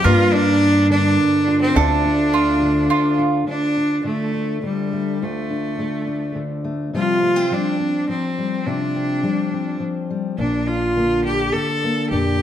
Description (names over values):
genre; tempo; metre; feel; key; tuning
acoustic folk duo or small band; 104 BPM; 3/4; straight; D minor; A4 = 441 Hz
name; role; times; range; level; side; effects
bright cello; melody; 0.0-12.4 s; G3 to A4; -20 LUFS; right 1 dB; slapback echo
mandolin; second line; 0.0-3.4 s; F4 to Bb4; -23 LUFS; right 7 dB; none
fingerpicked steel-string acoustic guitar; accompaniment; 0.0-12.4 s; D2 to F4; -22 LUFS; left 2 dB; none
upright bass; bass; 0.0-2.9, 10.4-12.4 s; Bb1 to G2; -22 LUFS; equal; none
room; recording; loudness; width
moderate large studio reverb, RT60 1.2 s; none; -17 LUFS; side -10 dB against mid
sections
0.0-3.5 A section; 3.5-12.4 B section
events
none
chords
0.0 Gm7; 1.8 Dm; 6.9 Csus4; 10.4 Bb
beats
| 0.04 0.61 1.19 | 1.76 2.33 2.90 | 3.48 4.05 4.63 | 5.20 5.78 6.35 | 6.93 7.50 8.08 | 8.66 9.23 9.81 | 10.38 10.96 11.54 | 12.11